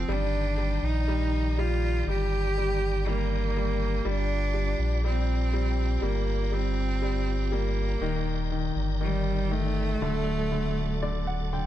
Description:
pop ballad; 60 BPM; 4/4; straight; G minor; A4 = 440 Hz
bright cello; melody; 0.0-11.5 s; G3 to G4; -31 LUFS; right 2 dB
bright concert grand piano; accompaniment; 0.0-11.7 s; D3 to G5; -32 LUFS; left 2 dB
tonewheel organ; sustained chords; 0.0-11.7 s; Eb3 to Bb5; -38 LUFS; equal; chorus vibrato, fast rotary speaker
sub bass with octave; bass; 0.0-11.7 s; D1 to Bb1; -28 LUFS; equal
light reverb; dark, warm production; -25 LUFS; side -12 dB against mid
0.0-11.7 A section
grand piano fill 10.5-11.7
0.1 Ebmaj7/G; 4.0 Gm7; 8.0 Ebmaj7; 10.0 D

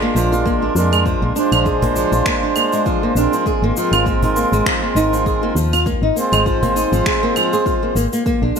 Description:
organic downtempo; 100 BPM; 4/4; swing 55% on 16ths; A4 = 445 Hz
hand-pumped harmonium; accompaniment; 0.0-8.6 s; Ab3 to C5; -19 LUFS; right 2 dB; vintage 12-bit sampler grit, sidechain pumping, ping-pong delay
flamenco guitar; arpeggios; 0.0-8.6 s; F3 to Ab4; -20 LUFS; left 1 dB; lush chorus, ping-pong delay
woody FM bass; bass; 0.2-8.5 s; Ab1 to F2; -20 LUFS; left 1 dB; sidechain pumping
electronic shaker, claves and finger snaps; drums; 0.2-8.6 s; -22 LUFS; right 3 dB; overdrive, gated reverb
cajon; percussion; 0.3-6.7 s; -24 LUFS; right 2 dB
electronic kick drum; drums; 0.5-8.4 s; -23 LUFS; left 1 dB; overdrive
moderate plate reverb, RT60 1.6 s; bright 1980s-style digital production; -14 LUFS; side -6 dB against mid
0.0-8.6 A section
0.0 Bb7; 3.5 Ab69

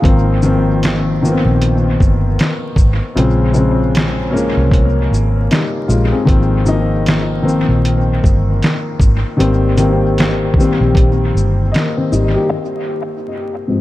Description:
lo-fi hip hop; 77 BPM; 4/4; swing 61% on 16ths; Ab major; A4 = 440 Hz
dark upright piano; accompaniment; 0.0-13.8 s; Ab2 to F5; -15 LUFS; left 2 dB; low-pass filter, dub echo
vintage muted fingered electric bass; bass; 0.0-12.3 s; G1 to C2; -16 LUFS; equal
dusty soul sampler-style drum kit; drums; 0.0-12.3 s; hi-hat, kick drum, shaker, snare drum; -16 LUFS; equal; dub echo
light reverb; echo-heavy mix, vinyl crackle; -12 LUFS; side -16 dB against mid
0.0-12.5 A section; 12.5-13.8 B section
upright piano solo 12.5-13.8; filter sweep on upright piano 12.5-13.8
0.0 Ab69; 3.2 Bbm9; 6.3 Ab69; 9.4 Abmaj9; 12.5 Ab5 (rootless)

